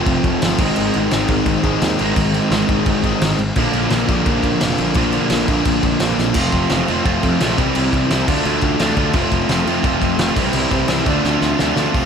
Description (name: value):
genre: punk rock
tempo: 172 BPM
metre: 4/4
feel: straight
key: F major from 6.4 s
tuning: A4 = 440 Hz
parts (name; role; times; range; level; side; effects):
- cranked stack guitar; riff; 0.0-12.1 s; Ab2 to F4; -20 LUFS; right 13 dB; overdrive
- distorted electric guitar; riff; 0.0-12.1 s; Ab2 to F4; -21 LUFS; left 11 dB; distortion
- thick fuzz guitar; riff; 0.0-12.1 s; F2 to D4; -24 LUFS; left 1 dB; distortion
- fuzz picked electric bass; bass; 0.1-12.1 s; F1 to F2; -23 LUFS; equal; overdrive
- loose indie drum kit; drums; 0.1-12.0 s; crash cymbal, hi-hat, kick drum, snare drum; -20 LUFS; equal; none
room: light reverb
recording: none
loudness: -14 LUFS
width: side -7 dB against mid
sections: 0.0-6.4 A section; 6.4-12.0 B section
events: drum fill 6.2, 11.3-12.0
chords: 0.0 F; 0.6 Ab; 3.6 Bb; 6.4 F; 7.6 C; 8.3 Dm; 9.2 F; 10.4 C; 11.1 Dm